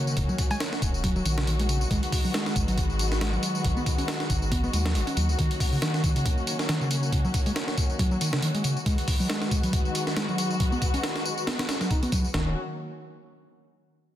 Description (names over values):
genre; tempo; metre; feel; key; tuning
breakbeat, breaks; 138 BPM; 4/4; swing 56% on 16ths; Eb minor; A4 = 440 Hz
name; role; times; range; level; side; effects
dark studio string section; sustained chords; 0.0-12.5 s; Eb3 to Gb4; -32 LUFS; left 2 dB; sidechain pumping
hollow-body short-scale picked electric bass; riff; 0.0-12.5 s; Db3 to Eb4; -29 LUFS; equal; overdrive, low-pass filter, tape echo
tambourine; drums; 0.1-12.3 s; none; -36 LUFS; left 2 dB; none
saturated sub bass; bass; 0.2-5.4, 12.3-12.5 s; Eb1 to Eb2; -27 LUFS; equal; none
breakbeat sampler-style drum kit; drums; 0.2-12.5 s; hi-hat, kick drum, snare drum; -27 LUFS; equal; none
hollow square pluck; melody; 0.5-0.9 s; Ab5; -36 LUFS; equal; chorus, old record sound, tape echo
room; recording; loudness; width
light reverb; dense, heavily limited modern master; -24 LUFS; side -12 dB against mid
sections
0.0-12.3 A section; 12.3-14.1 B section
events
filter sweep on picked electric bass 0.0-12.3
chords
0.0 Ebm7; 1.9 Abm7; 5.4 Ebm7; 8.9 Abm7; 12.3 Ebm7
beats
| 0.17 0.60 1.04 1.47 | 1.91 2.34 2.78 3.21 | 3.65 4.08 4.52 4.95 | 5.38 5.82 6.25 6.69 | 7.12 7.56 7.99 8.43 | 8.86 9.30 9.73 10.17 | 10.60 11.04 11.47 11.91 | 12.34